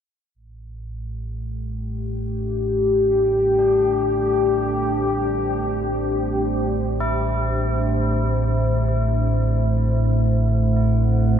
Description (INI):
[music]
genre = dark ambient drone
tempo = free time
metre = none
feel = none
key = unclear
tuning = A4 = 439 Hz
[part]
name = deep rumbling drone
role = drone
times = 0.3-11.4 s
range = A1 to A2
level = -22 LUFS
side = equal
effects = built-in reverb
[part]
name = deep dark ambient pad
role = sustained chords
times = 2.0-11.4 s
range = A3 to F#5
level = -21 LUFS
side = left 2 dB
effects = chorus, built-in reverb
[part]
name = tubular bells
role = arpeggios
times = 3.6-11.4 s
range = D4 to E4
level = -31 LUFS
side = equal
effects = ping-pong delay
[sound]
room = moderate huge ambient reverb, RT60 9.3 s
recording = none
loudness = -18 LUFS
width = side -8 dB against mid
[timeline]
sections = 0.4-11.4 A section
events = fade-in on tubular bells 0.4-11.4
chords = 0.4 Am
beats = free time